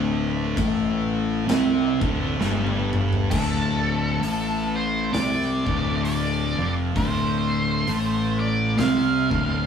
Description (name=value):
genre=stoner and doom metal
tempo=66 BPM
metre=4/4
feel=swing 58% on 8ths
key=D minor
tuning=A4 = 440 Hz
part: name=thick fuzz guitar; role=riff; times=0.0-9.7 s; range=D2 to C4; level=-26 LUFS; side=left 8 dB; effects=distortion
part: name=thick fuzz guitar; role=riff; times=0.0-9.7 s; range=D2 to C4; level=-26 LUFS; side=right 5 dB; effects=distortion
part: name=fuzz fingered electric bass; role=bass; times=0.0-9.7 s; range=D1 to C2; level=-27 LUFS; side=left 1 dB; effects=overdrive
part: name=big rock drum kit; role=drums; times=0.6-9.5 s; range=crash cymbal, hi-hat, kick drum, snare drum, toms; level=-29 LUFS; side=equal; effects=none
part: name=octave-fuzz lead guitar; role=melody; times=3.3-9.7 s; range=A4 to F5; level=-27 LUFS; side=right 1 dB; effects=wah, distortion
room=wet stone room reverb, RT60 0.9 s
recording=band playing live in one room, small room ambience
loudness=-20 LUFS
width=side -7 dB against mid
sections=0.0-3.3 A section; 3.3-9.7 B section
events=drum fill 2.4-3.3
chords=0.0 D5; 3.3 Dm